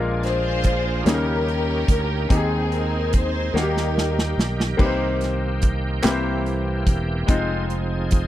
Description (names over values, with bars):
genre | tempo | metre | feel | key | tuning
slow gospel | 48 BPM (dotted quarters) | 6/8 | straight | unclear | A4 = 441 Hz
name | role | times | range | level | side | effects
bright grand piano | accompaniment | 0.0-8.3 s | Bb2 to C5 | -26 LUFS | left 4 dB | none
bright tonewheel organ | sustained chords | 0.0-8.3 s | Db3 to Ab4 | -30 LUFS | right 4 dB | slow rotary speaker, overdrive, chorus vibrato
fingered electric bass | bass | 0.0-8.3 s | E1 to Eb2 | -24 LUFS | equal | none
warm studio string section | melody | 0.2-4.8 s | C4 to C5 | -26 LUFS | left 2 dB | none
natural country drum kit | drums | 0.2-8.3 s | crash cymbal, hi-hat, kick drum, snare drum | -20 LUFS | right 1 dB | none
group handclap | percussion | 6.0-6.4 s | none | -28 LUFS | right 5 dB | none
room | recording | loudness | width
small room ambience | dry, close 1970s-style studio recording | -19 LUFS | side -13 dB against mid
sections
0.0-8.3 A section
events
drum fill 3.5-4.8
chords
0.0 Bb7; 1.1 Eb7; 2.3 Ab/Eb; 3.5 Eb; 4.8 Cm7; 6.0 C7; 7.3 Fm7